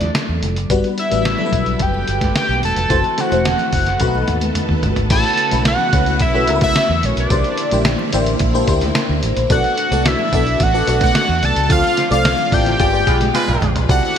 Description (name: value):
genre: polished 1980s jazz-funk pop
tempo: 109 BPM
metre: 4/4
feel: straight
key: unclear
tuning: A4 = 440 Hz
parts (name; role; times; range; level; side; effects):
- fat analog lead; melody; 0.0-14.2 s; C#5 to A5; -19 LUFS; equal; phaser
- FM electric piano; accompaniment; 0.0-14.2 s; F#3 to D5; -21 LUFS; left 4 dB; phaser, ensemble chorus
- vintage muted fingered electric bass; bass; 0.0-14.0 s; E1 to E2; -20 LUFS; equal; none
- lo-fi sampler-style drum kit; drums; 0.0-14.2 s; crash cymbal, hi-hat, kick drum, snare drum, toms; -20 LUFS; equal; gated reverb
- congas; percussion; 0.0-14.0 s; none; -30 LUFS; right 2 dB; none
- string machine, full ensemble; sustained chords; 0.7-14.2 s; B2 to B4; -26 LUFS; equal; ensemble chorus
- warm horn section; second line; 13.1-13.7 s; Ab3 to B4; -22 LUFS; right 2 dB; ping-pong delay
room: light reverb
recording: bright 1980s-style digital production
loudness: -14 LUFS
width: side -8 dB against mid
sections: 0.0-5.1 A section; 5.1-14.2 B section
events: drum fill 4.0-5.1, 13.3-13.9; band accent 11.7-13.9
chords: 0.0 D9; 0.7 Gmaj7; 2.9 F#m7b5; 4.0 B7; 5.1 A69; 7.3 C9; 9.5 Bm7; 11.7 Dm9; 12.8 G7b9